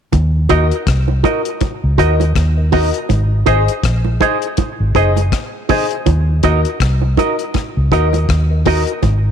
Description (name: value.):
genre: roots reggae.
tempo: 81 BPM.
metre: 4/4.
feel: swing 57% on 16ths.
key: Eb dorian.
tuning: A4 = 440 Hz.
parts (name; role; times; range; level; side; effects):
vintage muted fingered electric bass; bass; 0.1-9.3 s; Gb1 to Eb2; -14 LUFS; equal; none.
deep reggae drum kit; drums; 0.1-9.2 s; hi-hat, kick drum, rim click; -20 LUFS; left 2 dB; none.
bongos; percussion; 0.1-9.2 s; none; -24 LUFS; right 13 dB; none.
electric guitar with an envelope filter; accompaniment; 0.5-8.8 s; Eb4 to Eb5; -20 LUFS; right 12 dB; wide subtle chorus, tape echo.
warm upright piano; stabs; 0.5-8.9 s; Gb4 to Eb5; -21 LUFS; left 11 dB; none.
room: light reverb, small room ambience.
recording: 1960s-style stereo with parts hard left and right.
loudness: -13 LUFS.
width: side -8 dB against mid.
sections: 0.1-9.3 A section.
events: none.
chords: 0.1 Ebm; 3.1 Ab; 6.1 Ebm.